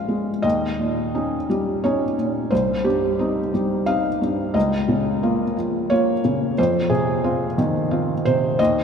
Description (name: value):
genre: neoclassical minimalist piano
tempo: 89 BPM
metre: 3/4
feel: rubato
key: unclear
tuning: A4 = 439 Hz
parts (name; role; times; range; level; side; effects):
- felt-muted upright piano; solo; 0.0-8.8 s; Bb1 to F5; -19 LUFS; equal; none
room: wet cathedral reverb, RT60 4.1 s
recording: recorded in a church or concert hall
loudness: -19 LUFS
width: side -6 dB against mid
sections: 0.4-8.8 A section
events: none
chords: 0.4 Eb7; 2.5 Cm; 4.6 Bbm/Db; 6.6 Fm7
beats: | 0.44 1.14 1.83 | 2.51 3.20 3.88 | 4.55 5.23 5.91 | 6.58 7.25 7.92 | 8.59